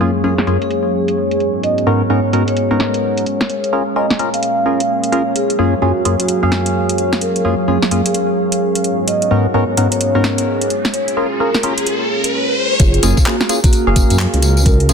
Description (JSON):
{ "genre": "UK garage, two-step garage", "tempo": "129 BPM", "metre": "4/4", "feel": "swing 62% on 16ths", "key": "F# major", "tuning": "A4 = 436 Hz", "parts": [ { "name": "warm analog pad", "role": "sustained chords", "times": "0.0-14.9 s", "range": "F#2 to E#5", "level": "-24 LUFS", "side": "equal", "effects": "chorus, sidechain pumping" }, { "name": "percussive organ stab", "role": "stabs", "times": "0.0-14.9 s", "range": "F#2 to E#5", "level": "-18 LUFS", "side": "equal", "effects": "chorus, phaser, vintage 12-bit sampler grit" }, { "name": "deep dark ambient pad", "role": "texture", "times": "0.0-12.3 s", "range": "F#3 to F#5", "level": "-21 LUFS", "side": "equal", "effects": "chorus, built-in reverb, sidechain pumping" }, { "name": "vibraphone with soft mallets", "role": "melody", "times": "0.2-14.9 s", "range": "A#3 to E#5", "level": "-20 LUFS", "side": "right 1 dB", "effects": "ping-pong delay" }, { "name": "garage drum kit", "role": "drums", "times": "0.4-14.9 s", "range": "handclaps, hi-hat, snare drum, tambourine", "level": "-20 LUFS", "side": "equal", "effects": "soft clipping on snare, low-pass filter on snare, low-pass filter on hats, low-pass filter on perc" }, { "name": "riser", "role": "sound effects", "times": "10.6-12.8 s", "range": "none", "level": "-21 LUFS", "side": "left 2 dB", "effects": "none" }, { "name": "dark detuned saw bass", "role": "bass", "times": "12.8-14.9 s", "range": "F#1 to F#2", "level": "-14 LUFS", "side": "equal", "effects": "none" }, { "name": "electronic kick drum", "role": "drums", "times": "12.8-14.8 s", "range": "none", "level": "-12 LUFS", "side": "equal", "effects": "none" } ], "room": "light reverb", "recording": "dense, heavily limited modern master", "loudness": "-13 LUFS", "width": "side -6 dB against mid", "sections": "0.0-12.8 A section; 12.8-14.9 B section", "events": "riser 10.6-12.8; drop 12.8-14.9", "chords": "0.0 F#maj9; 1.4 G#m11; 3.3 A#m7; 5.4 F#maj9; 8.8 G#m11; 10.7 A#m7; 12.8 F#maj9" }